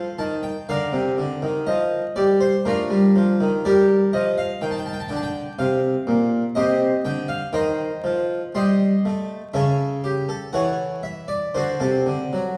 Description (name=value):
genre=classical, baroque-style suite movement for harpsichord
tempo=61 BPM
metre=3/4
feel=rubato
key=Bb major, G minor from 3.6 s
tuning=A4 = 440 Hz
part: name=harpsichord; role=solo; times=0.0-12.6 s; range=Bb2 to C6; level=-22 LUFS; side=equal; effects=none
room=wet recital hall reverb, RT60 1.5 s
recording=heard from further back in the room, vinyl crackle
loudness=-22 LUFS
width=mono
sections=0.0-12.6 A section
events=none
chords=0.0 F7; 0.7 Bb; 3.6 Gm; 6.6 Cm; 9.6 A/C#; 11.5 D7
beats=| 0.69 1.68 2.66 | 3.65 4.62 5.59 | 6.56 7.54 8.56 | 9.55 10.54 11.54